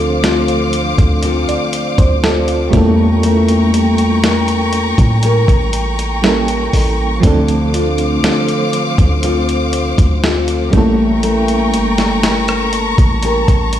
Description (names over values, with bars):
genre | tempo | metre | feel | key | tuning
contemporary R&B | 60 BPM | 4/4 | straight | D minor | A4 = 444 Hz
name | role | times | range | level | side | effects
FM electric piano with tremolo | accompaniment | 0.0-13.8 s | F3 to D5 | -18 LUFS | right 4 dB | none
warm studio string section | sustained chords | 0.0-13.8 s | C5 to D6 | -20 LUFS | left 2 dB | sidechain pumping
nylon-string guitar | arpeggios | 0.0-13.8 s | D3 to Bb4 | -18 LUFS | left 3 dB | ping-pong delay
warm 808-style bass | bass | 0.0-13.8 s | G1 to A2 | -17 LUFS | equal | none
dusty soul sampler-style drum kit | drums | 0.2-13.8 s | hi-hat, kick drum, rim click, snare drum | -16 LUFS | equal | none
room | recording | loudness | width
light reverb | played on a big sound system in a bare room, stone room reverb | -11 LUFS | side -11 dB against mid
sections
0.0-13.8 A section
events
none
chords
0.0 Dm7; 2.7 A7b9; 7.2 Dm7; 10.7 A7b9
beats
0.23 1.23 2.23 | 3.23 4.23 5.23 6.23 | 7.23 8.23 9.23 10.23 | 11.23 12.23 13.23